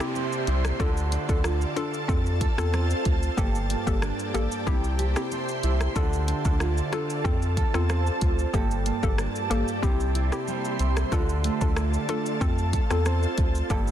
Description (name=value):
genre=dancehall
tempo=93 BPM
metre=4/4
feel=straight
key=unclear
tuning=A4 = 440 Hz
part: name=hollow square pluck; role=accompaniment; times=0.0-13.9 s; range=Bb3 to A4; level=-32 LUFS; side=left 3 dB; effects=chorus, sidechain pumping
part: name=ethereal airy pad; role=sustained chords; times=0.0-13.9 s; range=Bb3 to C6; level=-32 LUFS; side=equal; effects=ensemble chorus, built-in reverb, sidechain pumping
part: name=nylon-string guitar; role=arpeggios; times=0.0-13.9 s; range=G2 to A4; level=-32 LUFS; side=right 6 dB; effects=none
part: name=pop drum kit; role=drums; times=0.0-13.9 s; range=hi-hat, kick drum, rim click, shaker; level=-28 LUFS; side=equal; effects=vintage 12-bit sampler grit, soft clipping on snare
part: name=downlifter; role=sound effects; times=0.0-3.4 s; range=none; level=-41 LUFS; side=equal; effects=none
part: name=round analog bass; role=bass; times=0.5-13.9 s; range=G1 to F2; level=-26 LUFS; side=equal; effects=none
room=light reverb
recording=dense, heavily limited modern master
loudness=-23 LUFS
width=side -10 dB against mid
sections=0.0-13.9 A section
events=none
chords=0.0 C; 0.8 Dm; 2.1 F; 3.4 Gmadd9; 4.7 C; 6.0 Dm; 7.2 F; 8.5 Gmadd9; 9.8 C; 11.1 Dm; 12.4 F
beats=0.15 | 0.80 1.44 2.09 2.73 | 3.38 4.02 4.67 5.31 | 5.96 6.60 7.25 7.89 | 8.54 9.18 9.83 10.47 | 11.12 11.77 12.41 13.05 | 13.70